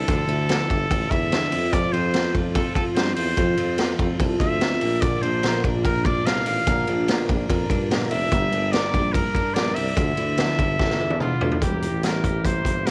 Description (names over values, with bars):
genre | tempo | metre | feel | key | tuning
jangly indie pop | 146 BPM | 4/4 | straight | D minor | A4 = 440 Hz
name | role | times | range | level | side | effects
clear trumpet | melody | 0.0-12.9 s | F4 to F5 | -29 LUFS | equal | cassette tape
picked twelve-string acoustic guitar | accompaniment | 0.0-12.9 s | G2 to Bb4 | -32 LUFS | equal | cassette tape
twelve-string electric guitar | arpeggios | 0.0-12.9 s | G2 to Bb4 | -32 LUFS | equal | cassette tape
warm tuba | bass | 0.0-12.9 s | E1 to G2 | -29 LUFS | equal | none
raw garage drum kit | drums | 0.1-12.9 s | hi-hat, kick drum, ride cymbal, snare drum, toms | -27 LUFS | equal | cassette tape
room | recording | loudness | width
light reverb, small room ambience | home recording on cassette | -22 LUFS | mono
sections
0.0-11.6 A section; 11.6-12.9 B section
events
drum fill 10.8-11.6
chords
0.0 Dmadd9; 1.5 F; 4.8 Bb; 8.3 Gm; 10.0 Dmadd9; 11.6 Edim